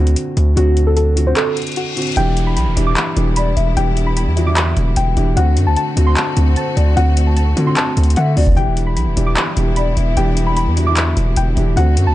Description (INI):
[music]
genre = hip hop, trap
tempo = 150 BPM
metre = 4/4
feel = half-time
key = E minor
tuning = A4 = 440 Hz
[part]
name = felt-muted upright piano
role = accompaniment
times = 0.0-12.1 s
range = D3 to G4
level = -21 LUFS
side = right 1 dB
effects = none
[part]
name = distorted 808-style bass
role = bass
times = 0.0-12.1 s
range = E1 to D3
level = -14 LUFS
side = equal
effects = distortion
[part]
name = booming analog drum machine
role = drums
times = 0.1-12.1 s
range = handclaps, hi-hat, kick drum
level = -21 LUFS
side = equal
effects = none
[part]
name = soft round pluck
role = melody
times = 0.6-12.1 s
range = F#4 to D6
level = -22 LUFS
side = left 1 dB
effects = chorus, tape echo
[part]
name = reverse cymbal and downlifter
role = sound effects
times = 1.5-5.4 s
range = none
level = -30 LUFS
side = left 3 dB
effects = none
[part]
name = clear symphonic string section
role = sustained chords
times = 2.2-12.1 s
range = D3 to F#4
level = -27 LUFS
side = left 2 dB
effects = none
[part]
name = hollow clarinet-like synth lead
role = second line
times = 3.4-3.8, 6.6-10.2 s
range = C5 to E5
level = -27 LUFS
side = left 4 dB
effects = chorus, tape echo
[sound]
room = little or no reverb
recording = dark, warm production, nothing above 10.3 kHz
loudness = -13 LUFS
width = side -15 dB against mid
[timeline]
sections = 0.0-2.2 A section; 2.2-12.1 B section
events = break 0.0-0.6, 1.4-2.2; reverse cymbal 1.5-2.2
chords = 0.0 D7; 2.2 Em7; 5.4 D7; 8.6 Em7